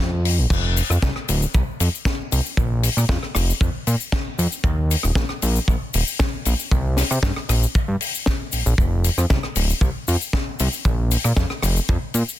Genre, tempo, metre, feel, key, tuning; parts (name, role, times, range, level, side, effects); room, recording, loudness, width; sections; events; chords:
nu-disco, nu disco; 116 BPM; 4/4; straight; A4 = 441 Hz
fat analog bass; bass; 0.0-12.2 s; D1 to C3; -20 LUFS; equal; tube saturation
tight funk drum kit; drums; 0.3-12.4 s; crash cymbal, hi-hat, rim click, shaker, snare drum; -25 LUFS; left 4 dB; soft clipping on snare
kick drum; drums; 0.5-12.0 s; -21 LUFS; equal; soft clipping on snare
little or no reverb; dense, heavily limited modern master; -18 LUFS; side -13 dB against mid
0.5-12.4 A section
drop 0.5-12.4